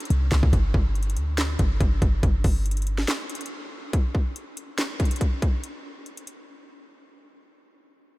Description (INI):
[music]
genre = hip hop, trap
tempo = 141 BPM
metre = 4/4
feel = half-time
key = unclear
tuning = A4 = 442 Hz
[part]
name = trap drum kit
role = drums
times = 0.0-6.4 s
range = handclaps, hi-hat, kick drum, snare drum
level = -25 LUFS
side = equal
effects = none
[part]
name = clean 808-style bass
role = bass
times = 0.1-3.1 s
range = G1 to D2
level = -23 LUFS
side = equal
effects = none
[sound]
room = light reverb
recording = none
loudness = -22 LUFS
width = side -20 dB against mid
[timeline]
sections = 0.0-3.9 A section; 3.9-7.3 B section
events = break 3.5-3.9, 6.5-7.3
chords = none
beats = 0.10 | 0.53 0.95 1.38 1.81 | 2.23 2.66 3.08 3.51 | 3.93 4.36 4.79 5.21 | 5.64 6.06